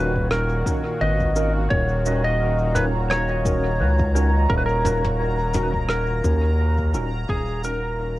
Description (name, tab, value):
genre	ambient dub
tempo	86 BPM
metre	4/4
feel	swing 55% on 16ths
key	Eb minor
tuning	A4 = 440 Hz
part	clean lap steel guitar	melody	0.0-8.2 s	Ab4 to Eb5	-25 LUFS	equal	cassette tape, dub echo
part	warm analog pad	sustained chords	0.0-8.2 s	Bb2 to F5	-30 LUFS	left 1 dB	chorus, tremolo, cassette tape
part	tine electric piano	stabs	0.0-7.8 s	Db4 to Bb4	-31 LUFS	right 1 dB	overdrive, medium stereo tremolo, cassette tape, dub echo
part	round analog bass	bass	0.0-8.2 s	Eb1 to Eb2	-22 LUFS	equal	none
part	electronic kick drum	drums	0.2-7.4 s	none	-26 LUFS	equal	cassette tape
part	soft brush drum kit	drums	0.3-7.8 s	cabasa, rim click, toms	-30 LUFS	equal	cassette tape, dub echo
part	bubbling stepped-filter texture	texture	1.7-8.2 s	Bb5	-32 LUFS	right 3 dB	chorus, built-in reverb, cassette tape
room	light reverb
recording	home recording on cassette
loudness	-19 LUFS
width	side -16 dB against mid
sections	0.0-8.2 A section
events	fade-out 5.4-8.2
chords	0.0 Ebm7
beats	0.31 1.01 | 1.71 2.41 3.10 3.80 | 4.50 5.20 5.89 6.59 | 7.29 7.99